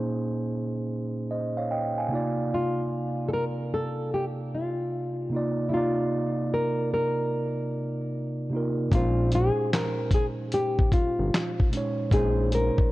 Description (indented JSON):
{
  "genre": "lo-fi hip hop",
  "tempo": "75 BPM",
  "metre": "4/4",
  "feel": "swing 66% on 16ths",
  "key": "Bb dorian",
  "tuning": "A4 = 441 Hz",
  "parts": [
    { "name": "mellow tine electric piano", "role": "accompaniment", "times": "0.0-12.9 s", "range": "Bb2 to Ab5", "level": "-28 LUFS", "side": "right 1 dB", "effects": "low-pass filter" },
    { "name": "nylon-string guitar", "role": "melody", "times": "2.5-12.9 s", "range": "E4 to Bb4", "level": "-28 LUFS", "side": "left 1 dB", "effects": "low-pass filter" },
    { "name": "fat analog bass", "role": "bass", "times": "8.9-12.7 s", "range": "G1 to Bb1", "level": "-25 LUFS", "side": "equal", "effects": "none" },
    { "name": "dusty soul sampler-style drum kit", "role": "drums", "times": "8.9-12.9 s", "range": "handclaps, hi-hat, kick drum, snare drum", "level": "-24 LUFS", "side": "equal", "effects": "none" }
  ],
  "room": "light reverb",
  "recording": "worn, warbling old tape, cassette tape, warbly pitch drift",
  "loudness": "-24 LUFS",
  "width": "side -18 dB against mid",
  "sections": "0.0-8.9 A section; 8.9-12.9 B section",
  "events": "none",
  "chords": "0.0 Bbm11; 2.1 Cm11; 8.9 Bbm11"
}